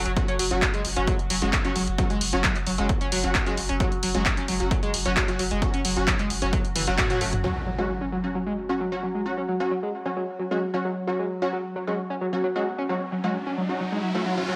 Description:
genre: driving peak-time techno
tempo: 132 BPM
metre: 4/4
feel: straight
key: unclear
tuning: A4 = 438 Hz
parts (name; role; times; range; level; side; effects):
- rave stab; stabs; 0.0-14.6 s; F#3 to F#4; -32 LUFS; equal; chorus, built-in reverb, sidechain pumping, dub echo
- saturated sub bass; bass; 0.0-7.4 s; F#1; -33 LUFS; equal; overdrive, sidechain pumping, low-pass filter
- overtone-sweeping drone; drone; 0.1-14.6 s; F#3 to F#4; -38 LUFS; equal; chorus, built-in reverb, sidechain pumping
- overdriven synth lead; riff; 0.1-14.6 s; E3 to F#4; -31 LUFS; equal; tube saturation, analog chorus, sidechain pumping, dub echo
- punchy analog drum machine; drums; 0.1-7.4 s; handclaps, hi-hat, toms; -29 LUFS; equal; low-pass filter on hats, small room ambience, low-pass filter on cymbals, low-pass filter on snare, low-pass filter on toms
- electronic kick drum; drums; 0.2-7.1 s; none; -29 LUFS; equal; small room ambience
- impact and riser; sound effects; 7.4-14.6 s; none; -37 LUFS; equal; none
room: moderate stone room reverb, RT60 1.0 s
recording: none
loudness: -25 LUFS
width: mono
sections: 0.0-7.4 A section; 7.4-14.6 B section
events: drop 0.0-7.4; drum fill 6.8-7.4; band accent 7.0; impact 7.4-9.3; riser 12.4-14.6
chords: 0.0 F#5

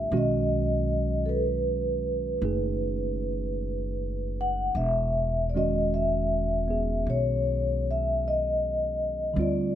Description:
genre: jazz ballad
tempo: 52 BPM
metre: 4/4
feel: swing 69% on 8ths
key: unclear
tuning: A4 = 440 Hz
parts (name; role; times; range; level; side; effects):
- vibraphone with soft mallets; melody; 0.0-9.8 s; A4 to F#5; -28 LUFS; left 1 dB; none
- tine electric piano; accompaniment; 0.0-9.8 s; D3 to Ab4; -31 LUFS; right 4 dB; none
- upright bass; bass; 0.0-9.8 s; E1 to D2; -30 LUFS; equal; none
room: little or no reverb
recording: close, detailed microphones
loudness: -25 LUFS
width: side -11 dB against mid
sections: 0.0-9.8 A section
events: none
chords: 0.1 B9; 4.7 E69

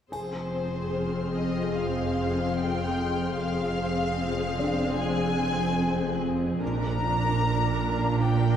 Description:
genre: cinematic, suspense film score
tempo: 74 BPM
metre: 4/4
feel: straight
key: F dorian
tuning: A4 = 440 Hz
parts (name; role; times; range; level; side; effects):
- rich studio violin section; melody; 0.1-8.6 s; C5 to Bb5; -31 LUFS; left 2 dB; none
- warm studio viola section; accompaniment; 0.1-8.6 s; C4 to Bb4; -31 LUFS; left 1 dB; none
- warm studio cello section; bass; 0.1-8.6 s; F2 to Bb2; -31 LUFS; right 1 dB; none
- warm studio double bass section; bass; 0.1-8.6 s; F1 to Bb1; -32 LUFS; right 3 dB; none
- bowed-like drone; drone; 1.1-8.6 s; Bb1 to F2; -33 LUFS; equal; built-in reverb
- triangle; percussion; 0.1-1.7 s; none; -57 LUFS; left 2 dB; none
- felt-muted upright piano; texture; 0.1-8.6 s; D4 to Ab5; -38 LUFS; left 2 dB; none
- warm studio violin section; texture; 0.1-6.2 s; C6 to F6; -42 LUFS; left 3 dB; none
room: wet church reverb, RT60 2.6 s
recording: dark, warm production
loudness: -24 LUFS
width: side -9 dB against mid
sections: 0.1-8.6 A section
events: none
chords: 0.1 Fm; 6.6 Bb

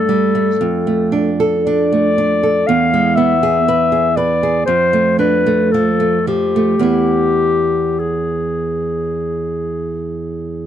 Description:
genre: romantic duo for clarinet and classical guitar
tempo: 52-60 BPM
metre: 4/4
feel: rubato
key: unclear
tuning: A4 = 440 Hz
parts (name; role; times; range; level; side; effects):
- warm clarinet; melody; 0.0-10.7 s; G4 to F5; -16 LUFS; left 4 dB; none
- nylon-string guitar; accompaniment; 0.0-10.7 s; E2 to B4; -16 LUFS; right 4 dB; none
room: light reverb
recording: dark, warm production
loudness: -13 LUFS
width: side -10 dB against mid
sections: 0.0-10.7 A section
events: none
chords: 0.0 A7(no3)/G; 0.6 Dm/F; 2.7 E; 4.7 Dm/F; 6.9 E

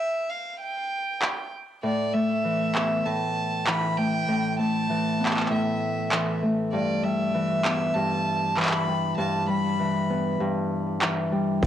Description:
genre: folktronica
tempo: 98 BPM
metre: 4/4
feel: swing 56% on 16ths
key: unclear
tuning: A4 = 440 Hz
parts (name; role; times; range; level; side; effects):
- rich violin; melody; 0.0-11.7 s; D5 to B5; -28 LUFS; equal; cassette tape, analog delay
- electronic handclaps and shaker; drums; 1.2-11.7 s; none; -26 LUFS; right 1 dB; cassette tape
- Celtic harp; arpeggios; 1.8-11.7 s; G2 to B3; -25 LUFS; left 1 dB; analog delay
- warm sub bass; bass; 11.6-11.7 s; A1; -23 LUFS; right 1 dB; none
- electronic kick drum; drums; 11.6-11.7 s; none; -21 LUFS; right 1 dB; cassette tape
room: light reverb, digital ambience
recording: home recording on cassette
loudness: -23 LUFS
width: side -10 dB against mid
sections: 0.0-11.6 A section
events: none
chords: 0.0 N.C.; 1.8 Asus2; 6.7 G6

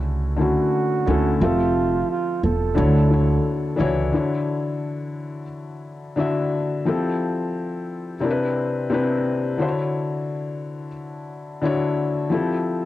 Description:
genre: lo-fi hip hop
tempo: 88 BPM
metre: 4/4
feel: swing 57% on 16ths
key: D major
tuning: A4 = 439 Hz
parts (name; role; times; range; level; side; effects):
- felt-muted upright piano; accompaniment; 0.0-12.9 s; C3 to E5; -22 LUFS; left 3 dB; low-pass filter, cassette tape
- upright bass; bass; 0.0-4.1 s; E1 to D2; -21 LUFS; right 1 dB; none
- breathy flugelhorn; melody; 0.4-3.6 s; F4 to A4; -26 LUFS; right 6 dB; low-pass filter, plate reverb, analog delay
room: moderate booth ambience, RT60 0.2 s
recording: home recording on cassette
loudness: -20 LUFS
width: side -14 dB against mid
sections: 0.0-4.1 A section; 4.1-12.9 B section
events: none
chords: 0.0 Dmaj9; 1.4 Fmaj9; 2.8 Dmaj9; 6.9 Fmaj9; 8.2 Cmaj9; 9.6 Dmaj9; 12.3 Fmaj9

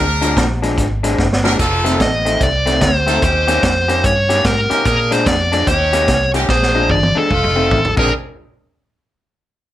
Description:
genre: electric blues shuffle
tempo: 147 BPM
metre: 4/4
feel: swing 64% on 8ths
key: Bb mixolydian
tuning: A4 = 439 Hz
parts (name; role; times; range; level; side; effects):
- electric guitar through a small old amp; riff; 0.0-8.1 s; F2 to G4; -20 LUFS; left 2 dB; none
- brilliant horn section; stabs; 0.0-8.1 s; A3 to Bb4; -21 LUFS; right 1 dB; none
- vintage muted fingered electric bass; bass; 0.0-8.1 s; F1 to Bb2; -20 LUFS; equal; none
- vintage drum kit; drums; 0.2-8.0 s; crash cymbal, hi-hat, kick drum, snare drum, toms; -19 LUFS; equal; none
- dark smooth lead guitar; melody; 2.0-8.1 s; A4 to Eb5; -16 LUFS; equal; overdrive
room: moderate club reverb, RT60 0.8 s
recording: none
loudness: -12 LUFS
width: side -13 dB against mid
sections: 0.0-8.1 A section; 8.1-9.7 B section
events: drum fill 1.2-1.6, 6.5-8.1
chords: 0.0 Bb7; 1.6 F7; 3.2 Eb7; 4.9 Bb7; 5.7 Eb7; 6.5 Bb7; 7.3 F7; 7.9 Bb9; 8.1 N.C.

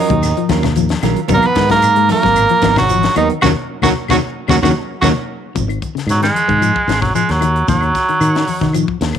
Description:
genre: afrobeat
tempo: 113 BPM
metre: 4/4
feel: straight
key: G# dorian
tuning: A4 = 441 Hz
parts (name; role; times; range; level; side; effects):
- bright tenor saxophone; melody; 0.0-5.1 s; D#4 to B4; -15 LUFS; right 2 dB; none
- brilliant trombone; second line; 0.0-5.1 s; D#3 to B3; -22 LUFS; right 10 dB; none
- clean electric guitar; stabs; 0.0-5.1 s; F#3 to A#4; -22 LUFS; right 12 dB; spring reverb
- electric guitar at the edge of break-up; arpeggios; 0.1-9.2 s; C#3 to G#3; -21 LUFS; left 12 dB; none
- fingered electric bass; bass; 0.1-9.2 s; G#1 to D#3; -17 LUFS; equal; none
- tight funk drum kit; drums; 0.1-9.2 s; hi-hat, kick drum, snare drum; -23 LUFS; left 5 dB; none
- congas; percussion; 0.1-9.2 s; none; -24 LUFS; left 8 dB; none
- claves; percussion; 0.2-9.2 s; none; -31 LUFS; left 12 dB; none
- shekere; percussion; 0.2-9.2 s; none; -28 LUFS; right 6 dB; none
- raspy baritone saxophone; melody; 6.1-8.7 s; F#3 to G#3; -16 LUFS; right 2 dB; none
room: light reverb, studio ambience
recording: 1960s-style stereo with parts hard left and right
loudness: -12 LUFS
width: side -9 dB against mid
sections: 0.0-5.6 A section; 5.6-9.2 B section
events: band accent 3.4-5.6; drum fill 4.8-5.6; baritone saxophone solo 5.6-9.2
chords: 0.0 D#m9; 1.3 G#m9; 3.4 D#m7; 5.6 G#5; 7.7 D#madd9

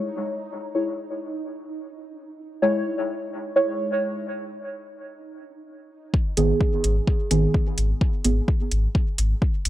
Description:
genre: dub techno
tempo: 128 BPM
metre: 4/4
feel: straight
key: G# minor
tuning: A4 = 440 Hz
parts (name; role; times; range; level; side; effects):
- deep mellow chord stab; stabs; 0.0-8.3 s; D#3 to C#5; -24 LUFS; right 1 dB; chorus, phaser, sidechain pumping, dub echo
- bubbling stepped-filter texture; texture; 0.0-6.1 s; D#4; -39 LUFS; right 4 dB; chorus, built-in reverb, sidechain pumping
- electronic kick drum; drums; 6.1-9.5 s; none; -22 LUFS; equal; overdrive
- soft dub sub bass; bass; 6.4-9.7 s; G#1; -22 LUFS; equal; tube saturation, sidechain pumping
- electronic hi-hat; drums; 6.4-9.7 s; none; -26 LUFS; equal; overdrive, low-pass filter on hats
room: light reverb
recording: dry, gritty hardware recording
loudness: -21 LUFS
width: side -14 dB against mid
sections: 0.0-6.1 A section; 6.1-9.7 B section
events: filter sweep on synth stab 6.1-9.7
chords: 0.0 C#m; 6.1 G#m

